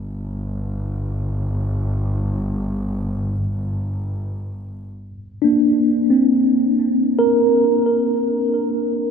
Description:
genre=ambient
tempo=free time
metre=none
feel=none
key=Bb major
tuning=A4 = 442 Hz
part: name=rich studio double bass section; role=bass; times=0.0-4.9 s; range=G1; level=-23 LUFS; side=equal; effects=none
part: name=mellow tine electric piano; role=arpeggios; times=5.4-9.1 s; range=Bb3 to Bb4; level=-15 LUFS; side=equal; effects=medium stereo tremolo, ping-pong delay
room=wet huge ambient reverb, RT60 8.0 s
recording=dreamy mix soaked in reverb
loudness=-17 LUFS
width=side -6 dB against mid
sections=0.0-4.9 A section; 4.9-9.1 B section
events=none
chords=0.0 N.C.; 4.9 Bbadd9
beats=free time

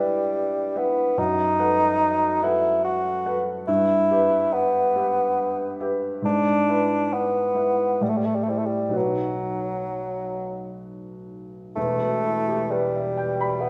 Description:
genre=classical, romantic duo for bassoon and grand piano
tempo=62-74 BPM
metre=3/4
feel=rubato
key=E minor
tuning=A4 = 440 Hz
part: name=warm bassoon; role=melody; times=0.0-13.7 s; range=F#3 to F#4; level=-24 LUFS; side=equal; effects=none
part: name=warm baby grand piano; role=accompaniment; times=0.0-13.7 s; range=E1 to B5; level=-28 LUFS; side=equal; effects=none
room=wet stone room reverb, RT60 1.2 s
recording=none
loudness=-23 LUFS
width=mono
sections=0.0-11.8 A section; 11.8-13.7 B section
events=none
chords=0.0 Em/G; 1.2 B7/F#; 3.7 Em/G; 6.2 E7/G#; 8.0 Am; 8.9 B; 11.8 Em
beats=0.36 | 1.18 2.01 2.84 | 3.68 4.53 5.38 | 6.24 7.12 8.01 | 8.95 9.89 10.83 | 11.76 12.70 13.61

